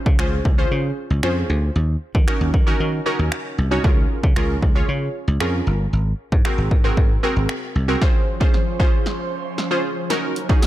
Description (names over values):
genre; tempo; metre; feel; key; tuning
dance-pop; 115 BPM; 4/4; straight; Db major; A4 = 441 Hz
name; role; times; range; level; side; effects
glassy wavetable pluck; accompaniment; 0.0-10.7 s; C4 to Db5; -24 LUFS; right 1 dB; chorus, sidechain pumping
dry thumbed slap bass; bass; 0.1-7.9 s; G1 to Eb3; -21 LUFS; equal; sidechain pumping
punchy analog drum machine; drums; 0.1-10.7 s; finger snaps, hi-hat, kick drum, snare drum; -18 LUFS; equal; none
airy breathy pad; sustained chords; 8.0-10.7 s; F3 to Db5; -28 LUFS; right 2 dB; chorus, phaser, sidechain pumping
room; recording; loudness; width
little or no reverb; dark, warm production; -17 LUFS; side -14 dB against mid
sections
0.0-8.0 A section; 8.0-10.7 B section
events
build-up 8.0-10.7; drum fill 8.0-10.7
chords
0.0 Dbmaj7; 1.8 Ebm7; 3.8 Bbm7/Db; 5.9 Ab9; 8.0 Dbmaj7; 10.1 Ebm7